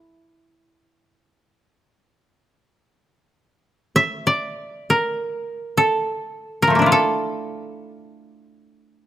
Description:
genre	japanese traditional, Japanese chamber music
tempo	free time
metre	none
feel	none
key	unclear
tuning	A4 = 440 Hz
part	koto	solo	0.0-9.1 s	F3 to E5	-18 LUFS	equal	none
room	light reverb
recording	close, detailed microphones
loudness	-18 LUFS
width	side -12 dB against mid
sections	0.0-9.1 A section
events	none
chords	none

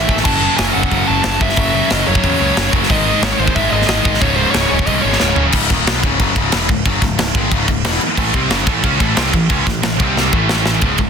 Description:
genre	heavy metal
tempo	182 BPM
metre	4/4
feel	straight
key	C# harmonic minor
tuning	A4 = 440 Hz
part	high-gain lead guitar	melody	0.0-5.4 s	B#4 to A5	-20 LUFS	left 1 dB	distortion, tape echo
part	high-gain distorted guitar	riff	0.0-11.1 s	C#2 to C#4	-20 LUFS	left 14 dB	distortion
part	scooped high-gain guitar	riff	0.0-5.5, 8.2-11.1 s	C#2 to C#4	-20 LUFS	right 13 dB	distortion
part	tight distorted guitar	riff	0.0-11.1 s	C#2 to C#4	-21 LUFS	right 1 dB	distortion
part	growling picked electric bass	bass	0.0-11.1 s	C#1 to E2	-21 LUFS	equal	overdrive
part	tight metal drum kit	drums	0.1-11.1 s	crash cymbal, hi-hat, kick drum, ride cymbal, snare drum, toms	-17 LUFS	equal	none
room	studio ambience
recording	dense, heavily limited modern master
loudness	-12 LUFS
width	side -6 dB against mid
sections	0.0-5.5 A section; 5.5-10.8 B section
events	drum fill 5.2-5.5, 10.2-10.8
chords	0.2 F#m; 2.9 G#5; 4.2 C#5; 5.5 C#m; 8.2 A5; 10.0 C5; 10.3 A5

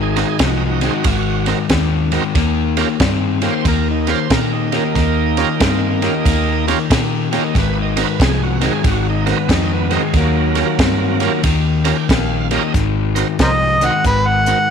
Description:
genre	electric blues shuffle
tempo	92 BPM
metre	4/4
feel	swing 64% on 8ths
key	Ab mixolydian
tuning	A4 = 440 Hz
part	bright tonewheel organ	accompaniment	0.0-14.6 s	Gb3 to Bb5	-21 LUFS	right 12 dB	slow rotary speaker, overdrive
part	overdriven semi-hollow guitar	riff	0.0-14.7 s	Ab2 to C4	-19 LUFS	left 11 dB	none
part	vintage muted fingered electric bass	bass	0.0-14.5 s	Ab1 to Bb2	-19 LUFS	right 1 dB	none
part	compact cocktail drum kit	drums	0.2-14.6 s	hi-hat, kick drum, ride cymbal, snare drum	-20 LUFS	right 1 dB	none
part	clear harmonica	melody	13.4-14.7 s	Bb4 to Gb5	-14 LUFS	right 2 dB	overdrive, slapback echo
room	light reverb, small room ambience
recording	1960s-style stereo with parts hard left and right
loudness	-14 LUFS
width	side -7 dB against mid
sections	0.0-12.7 A section; 12.7-14.7 B section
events	tonewheel organ fill 11.4-12.7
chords	0.0 Ab7; 2.4 Eb7; 7.6 Ab7; 10.1 Eb7; 12.7 Ab7

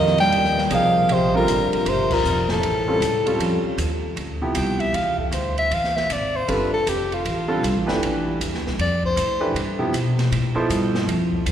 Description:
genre	modal jazz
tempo	156 BPM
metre	4/4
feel	swing 64% on 8ths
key	D dorian from 4.2 s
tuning	A4 = 439 Hz
part	breathy soprano saxophone	melody	0.0-9.5 s	F4 to G5	-22 LUFS	equal	none
part	dark bass clarinet	second line	0.0-3.8 s	A2 to G3	-25 LUFS	equal	none
part	clear grand piano	accompaniment	0.0-11.1 s	B2 to C5	-25 LUFS	right 1 dB	none
part	upright bass	bass	0.0-11.5 s	F1 to B2	-25 LUFS	equal	none
part	open jazz drum kit	drums	0.1-11.5 s	crash cymbal, hi-hat, kick drum, ride cymbal, snare drum	-30 LUFS	right 1 dB	none
room	wet church reverb, RT60 3.3 s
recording	recorded in a church or concert hall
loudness	-19 LUFS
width	side -9 dB against mid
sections	0.0-4.2 A section; 4.2-11.5 B section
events	band accent 2.0; soprano saxophone solo 4.2-11.5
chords	0.0 F9sus4; 2.6 A7alt; 4.2 Dm11

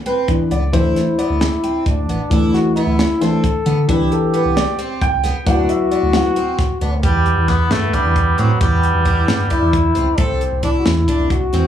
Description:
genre	progressive instrumental, band music in an uneven meter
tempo	267 BPM (eighths)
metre	7/8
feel	straight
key	unclear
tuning	A4 = 440 Hz
part	dark grand piano	accompaniment	0.1-6.3 s	E3 to G5	-18 LUFS	left 1 dB	plate reverb, slapback echo
part	picked twelve-string acoustic guitar	arpeggios	0.1-11.7 s	B3 to A4	-26 LUFS	right 1 dB	plate reverb, slapback echo
part	crisp fusion drum kit	drums	0.1-11.6 s	hi-hat, kick drum, snare drum	-21 LUFS	equal	none
part	round analog bass	bass	0.5-11.6 s	A1 to D3	-18 LUFS	right 1 dB	none
part	clear trombone	second line	0.7-11.7 s	B3 to A4	-21 LUFS	left 1 dB	plate reverb, slapback echo
part	warm cor anglais	melody	7.0-9.9 s	F#3 to B3	-19 LUFS	equal	plate reverb, slapback echo, tape echo
room	light reverb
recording	live gig heard through the venue's PA, club reverb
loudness	-14 LUFS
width	side -10 dB against mid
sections	0.0-7.0 A section; 7.0-11.7 B section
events	grand piano solo 0.0-7.0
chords	0.0 Cmaj7; 0.7 Dsus2; 3.9 Cmaj7; 5.5 D6; 7.0 Em7; 10.2 C6

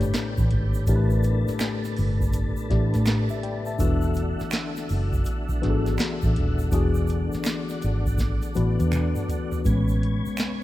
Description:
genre	R&B, neo-soul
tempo	82 BPM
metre	4/4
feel	swing 64% on 16ths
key	unclear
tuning	A4 = 440 Hz
part	mellow tine electric piano	accompaniment	0.0-10.6 s	A2 to A5	-28 LUFS	left 4 dB	analog chorus
part	tonewheel organ	sustained chords	0.0-10.6 s	B2 to G#5	-34 LUFS	equal	slow rotary speaker, chorus vibrato
part	vintage muted fingered electric bass	bass	0.0-10.3 s	D#1 to A2	-23 LUFS	equal	none
part	booming analog drum machine	drums	0.0-10.6 s	hi-hat, kick drum, snare drum, toms	-28 LUFS	equal	none
part	egg shaker and finger snaps	percussion	0.0-10.6 s	none	-38 LUFS	right 3 dB	none
room	light reverb, digital ambience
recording	rough home demo mix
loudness	-22 LUFS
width	side -15 dB against mid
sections	0.0-9.6 A section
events	drum fill 8.2-9.6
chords	0.0 A9sus4; 3.8 E9sus4; 9.6 Amaj9

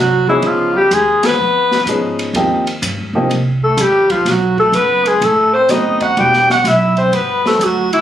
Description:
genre	jazz, small-group swing and bop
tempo	126 BPM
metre	4/4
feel	swing 66% on 8ths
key	unclear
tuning	A4 = 440 Hz
part	breathy alto saxophone	melody	0.0-8.0 s	E4 to G5	-12 LUFS	equal	none
part	trombone with metal mute	second line	0.0-8.0 s	E3 to G4	-21 LUFS	right 2 dB	none
part	upright bass	bass	0.0-8.0 s	E1 to G#2	-21 LUFS	equal	none
part	warm baby grand piano	accompaniment	0.3-7.5 s	F3 to Ab4	-17 LUFS	equal	none
part	open jazz drum kit	drums	0.3-8.0 s	hi-hat, kick drum, ride cymbal, snare drum	-23 LUFS	equal	none
room	light reverb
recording	recorded on a phone in the room, club reverb, compression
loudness	-11 LUFS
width	side -10 dB against mid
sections	0.0-8.0 A section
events	band accent 1.2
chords	0.4 C#9; 2.3 Eb69; 4.3 B7b9; 6.2 Em9

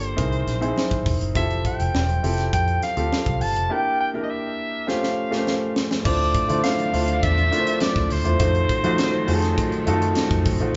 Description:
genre	polished 1980s jazz-funk pop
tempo	102 BPM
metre	4/4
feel	straight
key	unclear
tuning	A4 = 441 Hz
part	warm soprano saxophone	melody	0.0-9.9 s	C5 to A5	-28 LUFS	equal	tape echo
part	clear grand piano	accompaniment	0.0-10.8 s	A3 to C5	-27 LUFS	equal	none
part	vintage muted fingered electric bass	bass	0.0-10.7 s	E1 to F3	-26 LUFS	equal	none
part	crisp fusion drum kit	drums	0.0-10.7 s	crash cymbal, hi-hat, kick drum, snare drum	-29 LUFS	equal	none
part	congas	percussion	0.3-10.6 s	none	-40 LUFS	equal	none
part	clear studio string section	sustained chords	6.1-10.8 s	D3 to D4	-34 LUFS	equal	none
room	wet studio reverb, RT60 0.5 s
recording	band playing live in one room, nothing above 7.8 kHz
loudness	-22 LUFS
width	mono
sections	0.0-6.1 A section; 6.1-10.8 B section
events	drum fill 4.9-6.1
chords	0.2 C7alt; 1.4 Fmaj7; 3.7 Em7b5; 4.9 A7alt; 6.1 Dm9; 8.4 F7b9

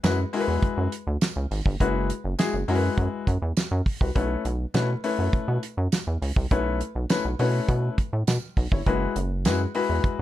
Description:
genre	early-eighties boogie funk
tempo	102 BPM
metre	4/4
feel	straight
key	unclear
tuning	A4 = 439 Hz
part	clear baby grand piano	accompaniment	0.0-10.2 s	G#3 to C#5	-27 LUFS	left 5 dB	none
part	rubbery square bass	bass	0.0-10.2 s	F#1 to B2	-26 LUFS	right 1 dB	none
part	damped 70s drum kit	drums	0.0-10.2 s	hi-hat, kick drum, snare drum	-26 LUFS	right 1 dB	none
part	tambourine	percussion	0.0-9.6 s	none	-37 LUFS	right 9 dB	none
room	light reverb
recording	dark, warm production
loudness	-22 LUFS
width	side -14 dB against mid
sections	0.0-10.2 A section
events	none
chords	0.0 F#9sus4; 4.2 B9sus4; 8.9 F#9sus4

